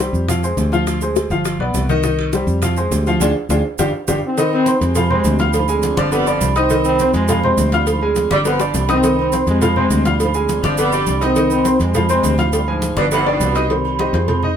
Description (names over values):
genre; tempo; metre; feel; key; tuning
latin, salsa; 206 BPM; 4/4; straight; C harmonic minor; A4 = 438 Hz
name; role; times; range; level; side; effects
clear baby grand piano; accompaniment; 0.0-14.6 s; Eb3 to F6; -19 LUFS; left 2 dB; none
fingered electric bass; bass; 0.0-14.5 s; G1 to F2; -20 LUFS; equal; none
bongos and cowbell; percussion; 0.0-14.4 s; none; -25 LUFS; left 1 dB; none
maracas; percussion; 0.0-13.7 s; none; -29 LUFS; right 8 dB; none
timbales and agogo bells; percussion; 0.0-14.6 s; none; -25 LUFS; right 10 dB; none
congas; percussion; 0.1-14.6 s; none; -27 LUFS; left 2 dB; none
mellow trombone section; melody; 4.2-13.5 s; F2 to C4; -20 LUFS; equal; none
clear saxophone section; second line; 6.0-13.7 s; B2 to G3; -21 LUFS; right 2 dB; none
room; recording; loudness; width
moderate studio reverb, RT60 0.6 s; band playing live in one room; -14 LUFS; side -8 dB against mid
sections
0.0-4.4 A section; 4.4-13.7 B section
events
band accent 3.2-4.4; drum fill 3.5-4.4, 8.5-9.0, 13.1-13.7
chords
0.3 Fm; 0.9 Dm7b5; 1.5 G7; 2.0 Cm; 2.6 Fm; 3.2 Ddim; 3.8 G5; 4.4 Cm; 5.0 Fm; 5.5 Ddim; 6.1 G7; 6.7 Cm; 7.3 Fm; 7.9 Ddim; 8.5 G7; 9.0 Cm; 9.6 Fm; 10.2 Ddim; 10.8 G7; 11.4 Cm; 11.9 Fm; 12.5 Ddim; 13.1 G7; 13.7 Cm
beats
0.00 0.29 0.58 | 0.87 1.17 1.46 1.75 | 2.04 2.33 2.63 2.92 | 3.21 3.50 3.79 4.08 | 4.38 4.67 4.96 5.25 | 5.54 5.83 6.12 6.42 | 6.71 7.00 7.29 7.58 | 7.87 8.16 8.45 8.74 | 9.04 9.33 9.62 9.91 | 10.20 10.49 10.78 11.07 | 11.37 11.66 11.95 12.24 | 12.53 12.82 13.11 13.40 | 13.70 13.99 14.28